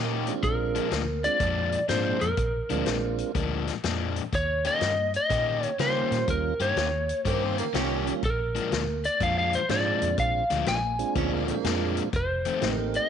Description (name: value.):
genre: electric blues shuffle.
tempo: 123 BPM.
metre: 4/4.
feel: swing 66% on 8ths.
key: Bb mixolydian.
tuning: A4 = 439 Hz.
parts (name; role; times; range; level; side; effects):
warm tenor saxophone; second line; 0.0-0.3, 7.3-8.1, 11.2-12.0 s; Eb3 to Db4; -34 LUFS; right 12 dB; none.
crunchy overdriven guitar; riff; 0.0-12.7 s; F2 to G4; -31 LUFS; left 10 dB; none.
vintage muted fingered electric bass; bass; 0.0-13.0 s; F1 to Db3; -31 LUFS; right 2 dB; none.
mellow tonewheel organ; accompaniment; 0.3-13.1 s; G3 to G4; -32 LUFS; right 15 dB; slow rotary speaker.
vintage drum kit; drums; 0.3-13.0 s; hi-hat, kick drum, snare drum; -33 LUFS; left 3 dB; none.
lightly driven lead guitar; melody; 0.4-13.1 s; Bb4 to Ab5; -27 LUFS; left 1 dB; none.
room: light reverb.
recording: 1960s-style stereo with parts hard left and right, nothing above 10.3 kHz.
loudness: -24 LUFS.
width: side -8 dB against mid.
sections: 0.0-13.1 A section.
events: none.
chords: 0.4 Bb7; 4.3 Eb7; 8.2 Bb7; 12.1 F7.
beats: | 0.43 0.92 1.40 1.89 | 2.38 2.86 3.35 3.84 | 4.32 4.81 5.30 5.79 | 6.28 6.77 7.25 7.74 | 8.23 8.72 9.21 9.70 | 10.19 10.67 11.16 11.65 | 12.13 12.62.